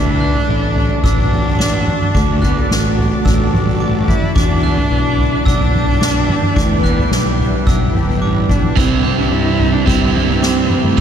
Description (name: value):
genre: post-rock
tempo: 109 BPM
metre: 4/4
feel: straight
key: E minor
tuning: A4 = 435 Hz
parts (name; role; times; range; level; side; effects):
- dark cello; melody; 0.0-11.0 s; F#3 to E4; -19 LUFS; equal; diffuse ambient delay
- granular cloud pad; sustained chords; 0.0-11.0 s; E4 to D6; -26 LUFS; equal; built-in reverb
- glockenspiel with hard plastic mallets; arpeggios; 0.0-11.0 s; D6 to G6; -27 LUFS; right 4 dB; diffuse ambient delay
- twangy electric guitar; arpeggios; 0.0-11.0 s; C3 to G4; -27 LUFS; left 5 dB; wide subtle chorus, diffuse ambient delay
- fuzz fingered electric bass; bass; 0.0-11.0 s; G1 to G2; -19 LUFS; equal; overdrive
- soft-mallet drum kit; drums; 0.2-11.0 s; kick drum, snare drum, toms; -16 LUFS; equal; none
- overdriven electric guitar; riff; 8.8-11.0 s; C3 to E4; -17 LUFS; right 8 dB; none
room: moderate huge ambient reverb, RT60 7.9 s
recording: dreamy mix soaked in reverb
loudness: -12 LUFS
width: side -8 dB against mid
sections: 0.0-11.0 A section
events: none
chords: 0.0 D; 4.4 Em7; 8.8 C